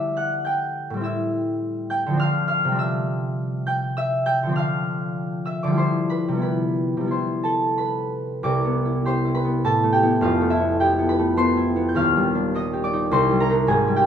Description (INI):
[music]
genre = classical, solo harp piece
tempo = 88-108 BPM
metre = 3/4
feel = rubato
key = C major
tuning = A4 = 440 Hz
[part]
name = concert harp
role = solo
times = 0.0-14.1 s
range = Eb1 to A6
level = -20 LUFS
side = equal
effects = none
[sound]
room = wet stone room reverb, RT60 1.2 s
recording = heard from further back in the room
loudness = -20 LUFS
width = side -8 dB against mid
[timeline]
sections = 0.0-8.4 A section; 8.4-14.1 B section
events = none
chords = 0.0 Em11/D; 1.0 Am7; 2.2 Dm7; 2.8 Cadd9; 4.5 Dm7; 5.8 Dm11; 6.4 Cmaj7; 8.4 Cmaj9; 9.6 Amadd9; 10.2 Fmaj7#11; 12.0 Ebmaj9; 13.1 Cmadd9